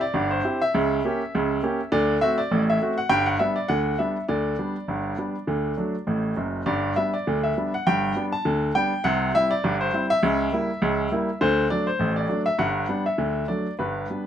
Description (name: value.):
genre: ragtime piano.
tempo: 101 BPM.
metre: 2/4.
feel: swing 57% on 16ths.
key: G major.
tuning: A4 = 440 Hz.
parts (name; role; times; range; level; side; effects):
clear baby grand piano; solo; 0.0-14.3 s; F#1 to A5; -21 LUFS; equal; none.
room: moderate small room reverb, RT60 0.5 s.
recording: none.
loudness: -21 LUFS.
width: side -9 dB against mid.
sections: 0.0-14.3 A section.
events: none.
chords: 0.0 C; 0.7 C#dim7; 1.9 D7; 3.1 G; 5.5 D; 6.7 G; 9.0 C; 10.2 C#dim7; 11.4 D; 12.6 G; 13.2 D.